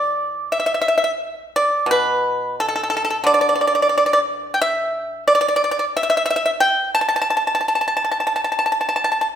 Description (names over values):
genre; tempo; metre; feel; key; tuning
chinese traditional, Chinese solo plucked strings; 75-93 BPM; 4/4; rubato; unclear; A4 = 438 Hz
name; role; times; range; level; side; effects
pipa; solo; 0.0-9.3 s; B2 to A5; -17 LUFS; equal; none
room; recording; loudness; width
moderate recital hall reverb, RT60 1.4 s; recorded in a church or concert hall, faint mains hum; -17 LUFS; side -9 dB against mid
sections
0.0-9.4 A section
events
none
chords
none